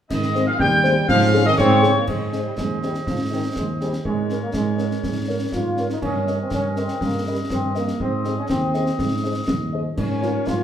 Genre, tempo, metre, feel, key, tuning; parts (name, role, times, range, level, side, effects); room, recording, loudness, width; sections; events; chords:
military-style march for wind band; 122 BPM; 2/4; straight; Ab major; A4 = 445 Hz
dark trumpet section; melody; 0.1-10.3 s; Db5 to Ab5; -28 LUFS; right 1 dB
mellow woodwind section; second line; 0.1-10.6 s; Ab4 to G5; -28 LUFS; left 1 dB
warm euphonium; second line; 0.1-2.1 s; Db3 to G3; -24 LUFS; right 1 dB
wooden piccolo; second line; 0.1-2.1 s; Db6 to G6; -25 LUFS; left 3 dB
mellow trombone section; sustained chords; 0.1-10.6 s; Eb3 to F4; -25 LUFS; equal
mellow tuba; bass; 0.1-10.6 s; Eb2 to Ab2; -24 LUFS; right 2 dB
concert snare drum, clash cymbals and concert bass drum; drums; 0.1-10.6 s; -27 LUFS; left 1 dB
dark French horn section; accompaniment; 0.3-10.3 s; Ab3 to Eb5; -28 LUFS; left 4 dB
wet large studio reverb, RT60 1.2 s; heard from further back in the room; -19 LUFS; side -9 dB against mid
0.1-2.1 A section; 2.1-10.6 B section
0.1 Ab; 1.1 Db5/Ab; 2.1 Ab; 4.1 Bbm7/Ab; 6.0 Eb/G; 8.0 Ab; 10.0 Bbm7/Ab